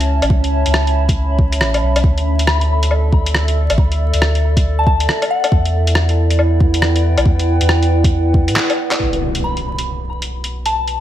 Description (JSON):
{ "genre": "future garage", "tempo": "138 BPM", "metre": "4/4", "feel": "swing 62% on 16ths", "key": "B minor", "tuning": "A4 = 441 Hz", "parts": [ { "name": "warbly tape-like pad", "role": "sustained chords", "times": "0.0-11.0 s", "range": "C#4 to B5", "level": "-21 LUFS", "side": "right 1 dB", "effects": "chorus, built-in reverb, sidechain pumping" }, { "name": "soft dub sub bass", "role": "bass", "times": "0.0-11.0 s", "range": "A1 to A2", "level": "-16 LUFS", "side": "equal", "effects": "sidechain pumping" }, { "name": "lo-fi sampler-style drum kit", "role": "drums", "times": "0.0-10.9 s", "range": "handclaps, hi-hat, rim click, woodblock", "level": "-19 LUFS", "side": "left 1 dB", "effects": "studio reverb" }, { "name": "electronic kick drum", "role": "drums", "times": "0.3-8.5 s", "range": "none", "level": "-15 LUFS", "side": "equal", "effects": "overdrive, studio reverb" }, { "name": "soft synth bell", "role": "melody", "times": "2.5-5.6, 9.4-11.0 s", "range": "F#5 to B5", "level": "-23 LUFS", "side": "left 2 dB", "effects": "chorus, phaser, ping-pong delay" }, { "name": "impact", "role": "sound effects", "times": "9.0-10.7 s", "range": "none", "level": "-25 LUFS", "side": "equal", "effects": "none" } ], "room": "light reverb", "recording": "vinyl crackle", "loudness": "-13 LUFS", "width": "side -12 dB against mid", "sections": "0.0-9.0 A section; 9.0-11.0 B section", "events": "drum fill 8.6-9.0; impact 9.0-10.7; filter sweep on ambient pad 9.0-11.0", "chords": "0.0 Aadd9; 2.0 Dsus2; 5.5 Em7; 9.0 Bm", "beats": "| 0.30 0.74 1.17 1.61 | 2.04 2.48 2.91 3.35 | 3.78 4.22 4.65 5.09 | 5.52 5.96 6.39 6.83 | 7.26 7.70 8.13 8.56 | 9.00 9.43 9.87 10.30 | 10.74" }